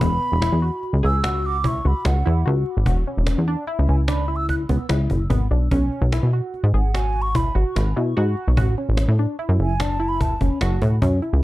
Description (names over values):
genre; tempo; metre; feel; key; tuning
progressive instrumental, band music in an uneven meter; 147 BPM; 7/4; straight; unclear; A4 = 440 Hz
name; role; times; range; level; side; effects
mellow hollow concert flute; melody; 0.0-10.4 s; F#5 to F#6; -28 LUFS; right 2 dB; plate reverb, tape echo
tight sequenced synth; arpeggios; 0.0-11.4 s; B3 to G#4; -27 LUFS; left 1 dB; chorus
plucky analog bass; bass; 0.0-11.4 s; E1 to B2; -19 LUFS; equal; none
cajon; drums; 0.0-11.3 s; none; -26 LUFS; equal; none
room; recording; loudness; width
little or no reverb; dark, warm production; -18 LUFS; side -17 dB against mid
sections
0.0-11.4 A section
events
flute solo 0.0-11.4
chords
0.0 Eadd9; 5.7 B5; 8.6 A6